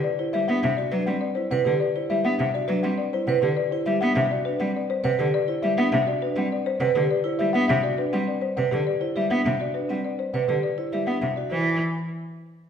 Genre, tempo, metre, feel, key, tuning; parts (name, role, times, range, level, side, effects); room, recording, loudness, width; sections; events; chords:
classical, minimalist pattern music; 102 BPM; 3/4; straight; C lydian; A4 = 443 Hz
folk marimba with medium mallets; melody; 0.0-11.8 s; G4 to F#5; -26 LUFS; left 6 dB
vibraphone with soft mallets; arpeggios; 0.0-11.8 s; C4 to B4; -27 LUFS; right 5 dB
rich cello; accompaniment; 0.3-11.8 s; C3 to B3; -26 LUFS; right 1 dB
wet recital hall reverb, RT60 1.4 s; recorded in a church or concert hall; -22 LUFS; side -8 dB against mid
0.0-11.5 A section; 11.5-12.7 B section
0.0 Cmaj9; 11.5 C